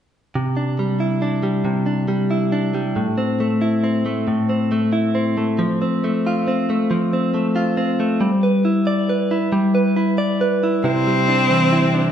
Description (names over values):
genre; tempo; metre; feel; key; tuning
pop; 46 BPM (dotted quarters); 6/8; straight; C major; A4 = 440 Hz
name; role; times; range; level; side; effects
direct-recorded clean electric guitar; accompaniment; 0.4-12.1 s; A2 to D5; -17 LUFS; equal; none
clear cello; melody; 10.9-12.1 s; C4; -17 LUFS; left 1 dB; none
room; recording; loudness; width
wet stone room reverb, RT60 1.3 s; band playing live in one room, nothing above 10.5 kHz; -17 LUFS; side -9 dB against mid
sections
0.4-10.8 A section; 10.8-12.1 B section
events
none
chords
0.4 Cadd9; 3.0 Am; 5.6 F; 8.2 G6; 10.8 Cadd9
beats
| 0.35 1.66 | 2.97 4.28 | 5.59 6.91 | 8.22 9.53 | 10.84